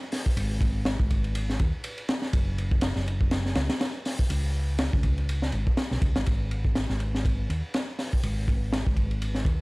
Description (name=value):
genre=breakbeat, breaks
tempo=122 BPM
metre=4/4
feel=swing 56% on 16ths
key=unclear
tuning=A4 = 440 Hz
part: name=crunchy breakbeat drum kit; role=drums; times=0.1-9.6 s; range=hi-hat, kick drum, ride cymbal, snare drum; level=-26 LUFS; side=equal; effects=none
part: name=hollow-body short-scale fingered electric bass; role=bass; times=0.4-9.6 s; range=F#1 to D#2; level=-27 LUFS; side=equal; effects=none
room=little or no reverb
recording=dark, warm production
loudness=-24 LUFS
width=side -26 dB against mid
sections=0.0-6.3 A section; 6.3-9.6 B section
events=drop 0.0-6.3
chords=none